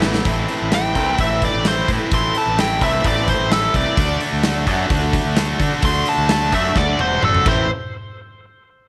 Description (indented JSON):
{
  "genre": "classic rock",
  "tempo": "129 BPM",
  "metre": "4/4",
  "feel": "straight",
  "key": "A dorian",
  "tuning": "A4 = 439 Hz",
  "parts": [
    { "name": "picked steel-string acoustic guitar", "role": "accompaniment", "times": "0.0-7.6 s", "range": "A2 to B4", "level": "-34 LUFS", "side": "equal", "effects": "none" },
    { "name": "overdriven electric guitar", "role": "riff", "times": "0.0-7.6 s", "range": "A2 to F#4", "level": "-26 LUFS", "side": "equal", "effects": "none" },
    { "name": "raw garage guitar", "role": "riff", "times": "0.0-7.6 s", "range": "A2 to F#4", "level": "-28 LUFS", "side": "equal", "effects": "overdrive" },
    { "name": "fuzz fingered electric bass", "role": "bass", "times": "0.0-7.7 s", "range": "E1 to D3", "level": "-25 LUFS", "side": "equal", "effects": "overdrive" },
    { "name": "big rock drum kit", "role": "drums", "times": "0.0-7.6 s", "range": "crash cymbal, hi-hat, kick drum, snare drum, toms", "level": "-24 LUFS", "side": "equal", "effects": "none" },
    { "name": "nasal lead guitar with a parked wah", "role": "melody", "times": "0.7-7.7 s", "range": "A4 to C6", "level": "-23 LUFS", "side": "equal", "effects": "overdrive, tape echo" }
  ],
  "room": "studio ambience",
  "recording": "none",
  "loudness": "-18 LUFS",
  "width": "mono",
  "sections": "0.2-7.7 A section; 7.7-8.9 B section",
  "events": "drum fill 0.0, 6.8-7.7; lead electric guitar solo 0.2-7.7",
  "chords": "0.2 Am; 4.0 D; 7.5 Am; 7.7 N.C.",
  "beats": "| 0.25 0.72 1.18 1.65 | 2.11 2.58 3.04 3.51 | 3.97 4.44 4.90 5.37 | 5.83 6.30 6.76 7.22 | 7.69"
}